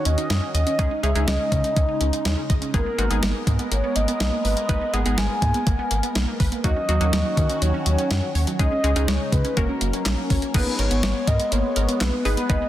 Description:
synth-pop; 123 BPM; 4/4; straight; G# minor; A4 = 440 Hz
mellow horn-like synth lead; melody; 0.0-12.7 s; A#4 to G#5; -27 LUFS; equal; chorus, tape echo
phased analog pad; sustained chords; 0.0-12.7 s; C#3 to A#4; -30 LUFS; left 1 dB; phaser, chorus
wide unison pluck; arpeggios; 0.1-12.7 s; F#3 to D#5; -30 LUFS; right 3 dB; tape echo
rubbery square bass; bass; 0.1-12.6 s; F#1 to D#3; -23 LUFS; equal
clean 12-bit digital drum machine; drums; 0.1-12.6 s; crash cymbal, handclaps, hi-hat, kick drum, snare drum; -24 LUFS; equal; overdrive
funky polysynth comp; accompaniment; 0.8-12.7 s; F#3 to B4; -29 LUFS; equal; chorus
light reverb, digital ambience; dense, heavily limited modern master; -19 LUFS; side -13 dB against mid
0.0-10.5 A section; 10.5-12.7 B section
0.0 D#m7; 0.8 C#sus2; 2.7 G#madd9; 6.6 D#m7; 8.6 C#sus2; 9.6 F#; 10.5 G#madd9

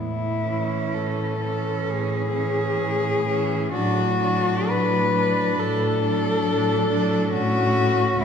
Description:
classical, lyrical piece for cello ensemble; 57-69 BPM; 4/4; rubato; A major; A4 = 439 Hz
dark cello; melody; 0.0-8.2 s; E4 to B4; -23 LUFS; left 4 dB
warm cello; bass; 0.0-8.2 s; C#2 to A2; -27 LUFS; right 2 dB
rich cello; second line; 0.4-8.2 s; C#4 to D4; -28 LUFS; right 5 dB
rich cello; accompaniment; 0.4-8.2 s; E3 to A3; -29 LUFS; left 1 dB
wet concert hall reverb, RT60 1.9 s; -20 LUFS; side -7 dB against mid
0.0-8.2 A section
0.0 A; 3.7 D/A; 7.3 A

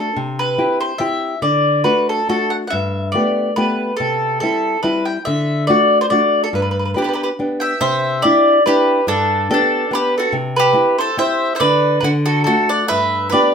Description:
italian folk, Italian serenade; 141 BPM; 3/4; swing 54% on 8ths; G major; A4 = 440 Hz
mandolin; melody; 0.0-13.5 s; A4 to G5; -16 LUFS; left 1 dB
nylon-string guitar; accompaniment; 0.0-13.5 s; G2 to G4; -19 LUFS; left 1 dB
bowl-back mandolin; second line; 7.0-13.5 s; D4 to E5; -19 LUFS; right 4 dB
wet studio reverb, RT60 0.6 s; minimal, uncompressed stereo recording; -14 LUFS; side -6 dB against mid
0.0-13.5 A section
0.2 C; 1.4 D; 2.7 Gadd9; 4.0 C; 5.3 D; 6.5 G; 7.8 Cadd9; 9.1 G; 10.3 C; 11.6 N.C.; 12.0 D; 12.9 G

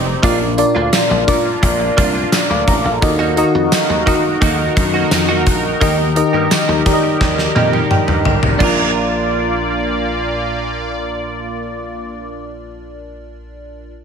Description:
1980s-style pop; 86 BPM; 4/4; straight; Bb major; A4 = 438 Hz
FM electric piano with soft pad layer; accompaniment; 0.0-13.9 s; Bb1 to D6; -18 LUFS; left 1 dB; chorus
sweeping resonant pad; sustained chords; 0.0-12.2 s; Bb2 to D5; -22 LUFS; equal; chorus
dry thumbed slap bass; bass; 0.0-12.6 s; F1 to Eb3; -22 LUFS; equal
direct-recorded clean electric guitar; riff; 0.1-12.7 s; Bb3 to Bb4; -23 LUFS; right 5 dB; analog chorus, tape echo
gated 80s drum kit; drums; 0.2-8.8 s; crash cymbal, hi-hat, kick drum, snare drum, tambourine, toms; -17 LUFS; equal; gated reverb
light reverb, studio ambience; -13 LUFS; side -6 dB against mid
0.0-8.6 A section; 8.6-11.4 B section
drum fill 7.2-8.6; FM electric piano fill 7.6-8.6
0.2 Bb; 3.0 Ebm; 5.8 Eb; 8.6 Bb

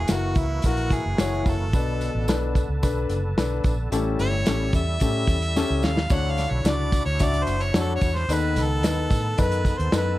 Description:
uptempo 1960s-style soul; 110 BPM; 4/4; straight; A4 = 438 Hz
clear harmonica; melody; 0.0-10.2 s; E4 to F#5; -28 LUFS; right 1 dB
overdriven tonewheel organ; sustained chords; 0.0-10.2 s; D3 to A4; -35 LUFS; right 1 dB; chorus vibrato, lush chorus
vintage muted fingered electric bass; bass; 0.0-10.2 s; F#1 to A2; -25 LUFS; equal
dark concert grand piano; accompaniment; 0.1-10.2 s; A2 to E5; -28 LUFS; left 4 dB
warm soul drum kit; drums; 0.1-10.1 s; hi-hat, kick drum, snare drum, splash cymbal; -24 LUFS; equal
tambourine; percussion; 0.1-10.1 s; -42 LUFS; right 6 dB
light reverb, small room reverb; dark, warm production; -21 LUFS; side -16 dB against mid
0.0-10.2 A section
harmonica solo 0.0-10.2; drum fill 5.6-6.1
0.0 F#7; 1.7 Bm7; 3.9 A7; 6.1 Dmaj7; 8.3 B7

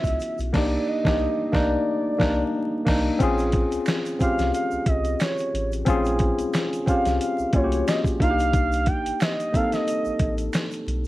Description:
R&B, neo-soul; 90 BPM; 4/4; swing 55% on 16ths; Bb dorian; A4 = 439 Hz
gliding portamento lead; melody; 0.0-10.3 s; Db5 to G5; -26 LUFS; right 1 dB; chorus, phaser
mellow tine electric piano; accompaniment; 0.0-11.1 s; Bb3 to A4; -24 LUFS; left 1 dB; auto-pan
round analog bass; bass; 0.0-11.1 s; A1 to Db2; -28 LUFS; equal
dusty soul sampler-style drum kit; drums; 0.0-11.0 s; crash cymbal, hi-hat, kick drum, snare drum; -25 LUFS; equal
egg shaker and finger snaps; percussion; 0.0-11.1 s; -40 LUFS; right 5 dB
light reverb, digital ambience; worn, warbling old tape, cassette tape, vinyl crackle, warbly pitch drift; -20 LUFS; side -17 dB against mid
0.0-3.2 A section; 3.2-11.1 B section
band accent 0.5-3.2
0.0 Dbm9; 0.5 Cm9; 3.2 Bbm9; 8.2 Cm9

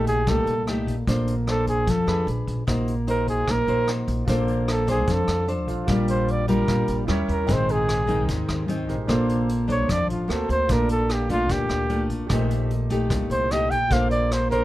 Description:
bossa nova; 150 BPM; 4/4; straight; Bb major; A4 = 444 Hz
warm flugelhorn; melody; 0.0-14.6 s; F4 to G5; -24 LUFS; right 1 dB
nylon-string guitar; accompaniment; 0.0-14.6 s; Ab2 to C5; -25 LUFS; left 1 dB
upright bass; bass; 0.0-14.6 s; A1 to F2; -26 LUFS; equal
vintage brush drum kit; drums; 0.1-14.6 s; hi-hat, kick drum, rim click; -30 LUFS; equal
clear baby grand piano; accompaniment; 4.2-14.6 s; Bb3 to G5; -34 LUFS; right 3 dB
little or no reverb; close, detailed microphones; -20 LUFS; side -15 dB against mid
0.0-14.6 A section
flugelhorn solo 0.0-14.6
0.0 Bb13sus4; 1.1 Bbmaj9; 2.3 Bb7b9; 2.7 Ebm6/Bb; 4.3 Bbmaj9; 5.9 Bb6; 7.1 Eb7b9; 7.5 Abmaj7/Bb; 9.1 Bbmaj9; 10.3 D7b13; 10.7 Gm9/Bb; 12.3 Am7b5; 13.9 Bbmaj9

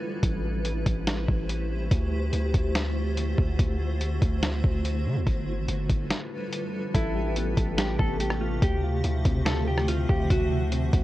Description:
hip hop, atmospheric cloud-rap; 143 BPM; 4/4; half-time; A minor; A4 = 440 Hz
granular cloud pad; sustained chords; 0.0-11.0 s; C3 to E5; -32 LUFS; equal; built-in reverb, sidechain pumping
long sustained 808-style bass; bass; 0.2-11.0 s; G1 to D3; -27 LUFS; equal
lo-fi sampler-style drum kit; drums; 0.2-11.0 s; hi-hat, kick drum, rim click, snare drum; -26 LUFS; equal
soft electric-piano-like synth keys; arpeggios; 6.9-11.0 s; B3 to A4; -35 LUFS; left 1 dB; chorus, tape echo
mellow electric guitar; melody; 7.0-10.7 s; E4 to A4; -32 LUFS; equal; tape echo
digital ambience; worn, warbling old tape, cassette tape, warbly pitch drift; -24 LUFS; side -16 dB against mid
0.0-6.9 A section; 6.9-11.0 B section
break 0.0, 6.1-6.9
0.2 Am9; 1.9 Dm11; 3.6 D9; 5.3 G13; 6.9 Am9; 8.6 Dm11; 10.3 D9

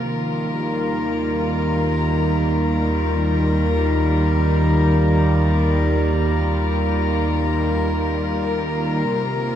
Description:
ambient; free time; Eb major; A4 = 439 Hz
warm chamber string section; sustained chords; 0.0-9.6 s; C3 to Bb4; -19 LUFS; equal
round analog bass; bass; 0.0-9.6 s; Bb1 to Eb2; -22 LUFS; equal; tube saturation
mellow flugelhorn; melody; 9.1-9.6 s; barely audible
wet cathedral reverb, RT60 6.0 s; dreamy mix soaked in reverb; -17 LUFS; side -10 dB against mid
0.0-9.1 A section
fade-in on analog synth bass 0.0-9.1
0.1 Ebadd9

